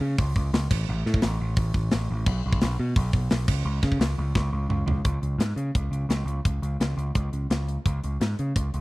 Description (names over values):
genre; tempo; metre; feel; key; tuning
heavy metal; 172 BPM; 4/4; straight; unclear; A4 = 439 Hz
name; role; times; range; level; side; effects
growling picked electric bass; bass; 0.0-8.8 s; A1 to C#3; -26 LUFS; equal; overdrive
tight metal drum kit; drums; 0.2-8.8 s; crash cymbal, hi-hat, kick drum, snare drum, toms; -26 LUFS; equal; none
room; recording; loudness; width
little or no reverb; dry, close 1970s-style studio recording; -23 LUFS; side -20 dB against mid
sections
0.0-5.1 A section; 5.1-8.8 B section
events
drum fill 4.4-5.1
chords
none